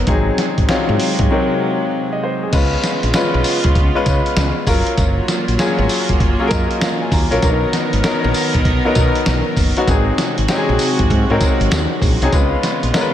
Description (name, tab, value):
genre	R&B, new jack swing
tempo	98 BPM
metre	4/4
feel	swing 65% on 16ths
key	unclear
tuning	A4 = 440 Hz
part	clear baby grand piano	accompaniment	0.0-13.1 s	F#3 to A#5	-18 LUFS	left 3 dB	slapback echo
part	rich studio string section	sustained chords	0.0-13.1 s	B#2 to A#4	-22 LUFS	right 1 dB	none
part	woody fretless electric bass	bass	0.0-12.9 s	F#1 to C#3	-19 LUFS	equal	analog chorus
part	dusty soul sampler-style drum kit	drums	0.1-13.1 s	crash cymbal, hi-hat, kick drum, snare drum, tambourine	-18 LUFS	equal	vintage 12-bit sampler grit
room	moderate lush hall reverb, RT60 2.7 s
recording	big arena sound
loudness	-14 LUFS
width	side -11 dB against mid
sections	0.0-2.5 A section; 2.5-13.1 B section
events	break 1.3-2.5; grand piano fill 6.2-7.4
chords	0.1 G#7; 2.5 C#7; 4.7 F#maj7; 7.4 Bmaj7; 9.9 G#7; 12.3 C#7